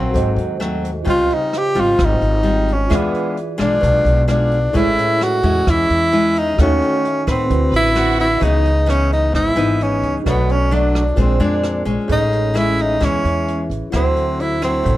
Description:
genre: bossa nova.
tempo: 131 BPM.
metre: 4/4.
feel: straight.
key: unclear.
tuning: A4 = 441 Hz.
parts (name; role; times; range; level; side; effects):
breathy tenor saxophone; melody; 0.0-15.0 s; B3 to G4; -18 LUFS; equal; none.
mellow tine electric piano; accompaniment; 0.0-15.0 s; C4 to E#5; -26 LUFS; right 3 dB; medium stereo tremolo.
nylon-string guitar; accompaniment; 0.0-15.0 s; G#2 to B4; -21 LUFS; left 2 dB; none.
upright bass; bass; 0.0-15.0 s; G#1 to A2; -19 LUFS; equal; none.
jazz brush drum kit; drums; 0.1-15.0 s; hi-hat, kick drum, rim click; -24 LUFS; equal; none.
warm symphonic violin section; second line; 7.7-8.4 s; F#4 to B4; -26 LUFS; right 3 dB; none.
room: light reverb.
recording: none.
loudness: -14 LUFS.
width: side -15 dB against mid.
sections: 0.0-8.4 A section; 8.4-15.0 B section.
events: none.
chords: 0.1 G#7b9; 1.1 C#maj9#11; 2.9 E7b9; 4.7 Amaj7; 6.6 D#m7b5; 7.5 D13; 8.4 C#m9; 10.3 Bm7; 11.2 A#9; 12.1 Amaj7; 13.9 D9.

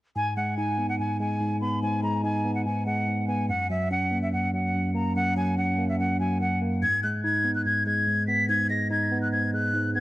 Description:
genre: hip hop.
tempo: 144 BPM.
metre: 4/4.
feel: half-time.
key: G# minor.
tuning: A4 = 442 Hz.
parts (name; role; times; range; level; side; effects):
breathy bright concert flute; melody; 0.2-10.0 s; E5 to B6; -27 LUFS; equal; ping-pong delay.
mellow tine electric piano; accompaniment; 0.2-10.0 s; F#2 to D#4; -26 LUFS; equal; none.
room: light reverb.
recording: worn, warbling old tape, cassette tape, warbly pitch drift.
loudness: -23 LUFS.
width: side -17 dB against mid.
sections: 0.2-6.8 A section; 6.8-10.0 B section.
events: none.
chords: 0.2 G#m; 3.5 F#; 6.8 G#m.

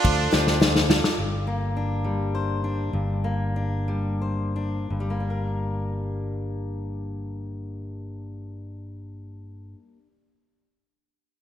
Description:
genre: indie folk with a building arrangement.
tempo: 56-71 BPM (dotted quarters).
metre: 6/8.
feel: straight.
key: G minor.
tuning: A4 = 443 Hz.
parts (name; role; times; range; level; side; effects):
rich fiddle; melody; 0.0-0.6 s; F4; -32 LUFS; right 1 dB; ping-pong delay.
bright trumpet; second line; 0.0-0.9 s; D4; -29 LUFS; right 5 dB; none.
picked acoustic archtop guitar; accompaniment; 0.0-1.2 s; D3 to A4; -30 LUFS; left 6 dB; none.
glass harmonica; sustained chords; 0.0-1.2 s; A4 to D6; -37 LUFS; left 1 dB; none.
tenor ukulele; arpeggios; 0.0-1.2 s; F4 to A4; -31 LUFS; right 8 dB; none.
fingered electric bass; bass; 0.0-9.7 s; G1 to D2; -28 LUFS; equal; none.
unplugged drum kit; drums; 0.0-1.2 s; kick drum, ride cymbal, snare drum; -21 LUFS; left 1 dB; gated reverb.
fingerpicked steel-string acoustic guitar; accompaniment; 1.2-10.2 s; G2 to C5; -31 LUFS; left 3 dB; none.
room: moderate lush hall reverb, RT60 1.9 s, small room ambience.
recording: bright 1980s-style digital production.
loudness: -23 LUFS.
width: side -11 dB against mid.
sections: 0.0-1.2 A section; 1.2-4.9 B section; 4.9-9.2 C section.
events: drum fill 0.3-1.2; slowing down 1.2-4.9.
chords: 0.0 Dm; 1.2 Gm.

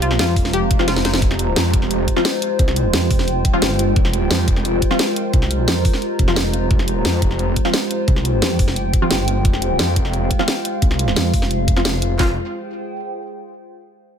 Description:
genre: dark technical drum and bass.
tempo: 175 BPM.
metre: 4/4.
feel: straight.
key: F minor.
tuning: A4 = 436 Hz.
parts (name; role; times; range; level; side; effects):
dark analog pad; sustained chords; 0.0-12.4 s; Ab3 to F5; -25 LUFS; right 1 dB; chorus, phaser, sidechain pumping.
analog pluck; arpeggios; 0.0-1.1 s; F4 to C5; -25 LUFS; left 4 dB; chorus, sidechain pumping, digital delay.
snarling distorted saw bass; bass; 0.0-12.4 s; F1 to F2; -20 LUFS; equal; distortion, overdrive.
drum and bass drum kit; drums; 0.0-12.1 s; hi-hat, snare drum; -22 LUFS; equal; none.
warbly tape-like pad; texture; 0.0-13.5 s; Ab3 to Bb5; -25 LUFS; equal; chorus, built-in reverb, phaser, sidechain pumping.
drum and bass drum kit; drums; 0.4-12.3 s; handclaps, kick drum, snare drum; -18 LUFS; equal; none.
orchestra-hit-like synth stab; stabs; 0.8-12.3 s; F3 to F4; -24 LUFS; left 1 dB; built-in reverb, digital delay.
room: digital ambience.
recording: none.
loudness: -15 LUFS.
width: side -8 dB against mid.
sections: 0.0-12.2 A section; 12.2-13.6 B section.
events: drum fill 0.9-1.2.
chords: 0.0 Fmadd9.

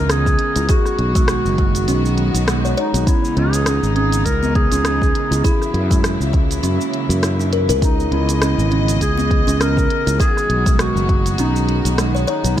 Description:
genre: organic downtempo.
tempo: 101 BPM.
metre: 4/4.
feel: swing 56% on 16ths.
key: C# dorian.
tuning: A4 = 440 Hz.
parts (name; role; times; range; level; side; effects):
mellow clarinet; melody; 0.0-12.6 s; D#4 to A#4; -22 LUFS; equal; ping-pong delay.
rich chamber string section; sustained chords; 0.0-12.6 s; C#3 to D#5; -25 LUFS; left 1 dB; sidechain pumping.
kalimba; arpeggios; 0.0-12.6 s; G#3 to C#5; -23 LUFS; right 1 dB; tape echo.
sustaining fretless electric bass; bass; 0.0-12.6 s; F#1 to F#2; -19 LUFS; equal; none.
organic electronic drum kit; drums; 0.1-12.6 s; cabasa, hi-hat, rim click; -25 LUFS; right 1 dB; studio reverb.
electronic kick drum; drums; 0.3-12.6 s; none; -18 LUFS; equal; overdrive, studio reverb.
room: light reverb, small room ambience.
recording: dark, warm production.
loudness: -14 LUFS.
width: side -11 dB against mid.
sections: 0.0-12.6 A section.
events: none.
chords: 0.0 C#m9; 0.7 G#m7; 3.1 C#m9; 5.4 F#7; 7.8 C#m9; 10.2 G#m7.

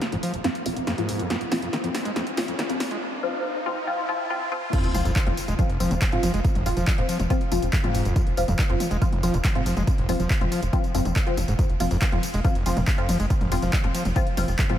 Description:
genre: driving peak-time techno.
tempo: 140 BPM.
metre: 4/4.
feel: straight.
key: F phrygian.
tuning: A4 = 440 Hz.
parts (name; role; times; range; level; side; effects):
punchy analog drum machine; drums; 0.0-14.8 s; crash cymbal, handclaps, hi-hat, ride cymbal, snare drum, tambourine, toms; -29 LUFS; left 1 dB; overdrive, sidechain pumping on hats, sidechain pumping on cymbals, sidechain pumping on perc, sidechain pumping on toms.
riser and sub drop; sound effects; 0.1-6.4 s; none; -34 LUFS; equal; none.
screaming distorted acid line; riff; 0.1-14.8 s; F1 to Ab3; -30 LUFS; equal; distortion, chorus, sidechain pumping, diffuse ambient delay.
filtered dub chord stab; stabs; 0.1-14.8 s; F3 to F4; -28 LUFS; left 2 dB; phaser, analog chorus, sidechain pumping, diffuse ambient delay.
tight sequencer bass; bass; 0.1-14.6 s; Eb1 to Gb1; -27 LUFS; equal; sidechain pumping.
electronic kick drum; drums; 4.7-14.7 s; none; -23 LUFS; equal; overdrive.
room: moderate huge ambient reverb, RT60 4.4 s.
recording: dreamy mix soaked in reverb, high-pass filter.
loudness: -21 LUFS.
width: side -11 dB against mid.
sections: 0.0-4.7 A section; 4.7-14.8 B section.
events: build-up 0.0-4.7; drum fill 0.0-3.0; filter sweep on acid bass 0.0-4.7; filter sweep on synth stab 0.0-4.7; riser 0.1-4.7; drop 4.7-14.8; impact 4.7-6.4.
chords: 0.0 F5.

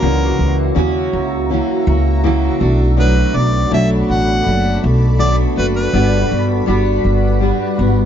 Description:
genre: acoustic pop.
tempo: 81 BPM.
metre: 4/4.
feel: straight.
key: unclear.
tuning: A4 = 440 Hz.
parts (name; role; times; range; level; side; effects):
clear harmonica; melody; 0.0-6.5 s; A#4 to F#5; -20 LUFS; left 1 dB; none.
fingerpicked steel-string acoustic guitar; accompaniment; 0.0-8.1 s; B2 to F#4; -17 LUFS; equal; double-tracked left and right.
granular cloud pad; sustained chords; 0.0-8.1 s; G3 to B5; -25 LUFS; equal; built-in reverb.
upright bass; bass; 0.0-8.1 s; F#1 to Eb2; -15 LUFS; equal; none.
room: light reverb.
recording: dark, warm production, nothing above 7.6 kHz.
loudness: -13 LUFS.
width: side -9 dB against mid.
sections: 0.0-8.1 A section.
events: none.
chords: 0.0 F#7/C#; 2.6 Bm7; 5.9 Gmaj7.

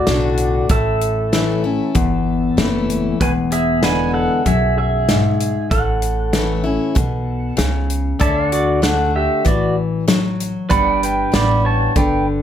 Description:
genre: honky-tonk and classic country.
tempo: 96 BPM.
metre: 4/4.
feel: straight.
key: D major.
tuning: A4 = 439 Hz.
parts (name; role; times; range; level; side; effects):
pedal steel guitar; melody; 0.0-12.3 s; F#4 to B5; -20 LUFS; right 2 dB; plate reverb.
picked steel-string acoustic guitar; accompaniment; 0.0-12.4 s; E2 to F#4; -20 LUFS; left 4 dB; none.
upright bass; bass; 0.1-12.4 s; E1 to D2; -22 LUFS; right 1 dB; none.
natural country drum kit; drums; 0.1-12.1 s; hi-hat, kick drum, snare drum; -20 LUFS; equal; none.
pedal steel guitar; sustained chords; 8.2-12.4 s; D4 to G5; -27 LUFS; right 5 dB; none.
room: moderate studio reverb, RT60 0.5 s.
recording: none.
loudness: -15 LUFS.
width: side -10 dB against mid.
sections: 0.0-12.4 A section.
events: none.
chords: 0.0 D; 0.7 A; 3.2 E7; 5.7 A; 8.2 D; 10.7 G6.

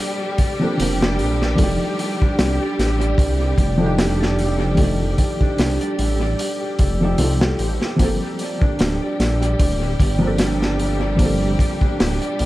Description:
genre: trip hop.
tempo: 75 BPM.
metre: 4/4.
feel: swing 56% on 16ths.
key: G minor.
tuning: A4 = 440 Hz.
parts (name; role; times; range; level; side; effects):
felt-muted upright piano; accompaniment; 0.0-12.5 s; Eb3 to Bb4; -24 LUFS; equal; harmonic tremolo, vintage 12-bit sampler grit, tape echo.
warm studio string section; sustained chords; 0.0-12.5 s; G3 to G4; -28 LUFS; left 1 dB; vintage 12-bit sampler grit.
concert harp; arpeggios; 0.0-12.5 s; D4 to D5; -25 LUFS; right 1 dB; tape echo.
crunchy breakbeat drum kit; drums; 0.4-12.5 s; hi-hat, kick drum, snare drum; -21 LUFS; equal; tape echo.
dark detuned saw bass; bass; 0.8-12.5 s; D1 to C2; -21 LUFS; equal; none.
room: studio reverb.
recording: echo-heavy mix, vinyl crackle.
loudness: -16 LUFS.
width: side -16 dB against mid.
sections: 0.0-12.5 A section.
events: none.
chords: 0.0 Gm11; 1.6 F9; 8.0 Gm11.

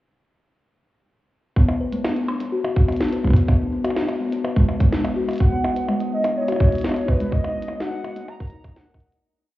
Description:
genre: IDM.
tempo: 125 BPM.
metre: 4/4.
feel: straight.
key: unclear.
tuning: A4 = 442 Hz.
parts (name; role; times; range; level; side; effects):
kalimba; arpeggios; 1.6-9.2 s; G#3 to B4; -24 LUFS; left 2 dB; tape echo.
electronic kick drum; drums; 1.6-9.0 s; none; -16 LUFS; equal; none.
glitchy drum kit; drums; 1.7-9.2 s; hi-hat, percussion blips, snare drum; -28 LUFS; equal; tape echo.
warbly nostalgic lead; melody; 5.4-9.1 s; B4 to A#5; -26 LUFS; right 1 dB; chorus.
flickering grainy texture; texture; 5.8-9.3 s; D#4 to D#5; -36 LUFS; equal; built-in reverb.
room: moderate lush hall reverb, RT60 2.1 s.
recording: heard muffled through a wall, club reverb, EQ.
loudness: -18 LUFS.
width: side -16 dB against mid.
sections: 1.6-9.2 groove.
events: fade-out 6.7-9.2.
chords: 1.6 N.C.; 7.3 D#m.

